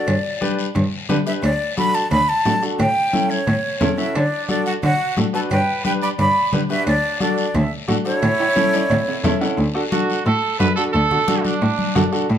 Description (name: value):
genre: latin, cumbia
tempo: 177 BPM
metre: 4/4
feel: straight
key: D major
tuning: A4 = 440 Hz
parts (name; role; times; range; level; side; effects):
- breathy jazz flute; melody; 0.0-9.4 s; C#5 to B5; -20 LUFS; equal; none
- clear upright piano; accompaniment; 0.0-12.2 s; C#4 to F#5; -23 LUFS; equal; none
- rich cello; bass; 0.1-12.4 s; D2 to D3; -21 LUFS; equal; none
- congas; percussion; 0.1-12.4 s; none; -25 LUFS; left 3 dB; none
- cowbell and timbales; percussion; 0.1-9.5 s; none; -28 LUFS; right 2 dB; none
- guiro; percussion; 0.1-12.4 s; none; -32 LUFS; left 6 dB; none
- clear trumpet; second line; 4.0-12.1 s; D4 to D5; -24 LUFS; right 5 dB; none
room: moderate large studio reverb, RT60 0.9 s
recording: dark, warm production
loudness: -16 LUFS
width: side -9 dB against mid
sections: 0.0-9.6 A section; 9.6-12.4 B section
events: drum fill 8.2-9.6; upright piano fill 8.6-9.6; trumpet solo 9.6-12.4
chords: 0.1 G; 1.4 D; 2.8 A7; 4.2 D; 5.5 G; 6.9 D; 8.2 A; 9.6 D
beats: | 0.08 0.42 0.76 1.10 | 1.44 1.78 2.12 2.46 | 2.79 3.13 3.47 3.81 | 4.15 4.49 4.83 5.17 | 5.51 5.85 6.19 6.53 | 6.87 7.21 7.55 7.89 | 8.23 8.56 8.90 9.24 | 9.58 9.92 10.26 10.60 | 10.94 11.28 11.62 11.96 | 12.29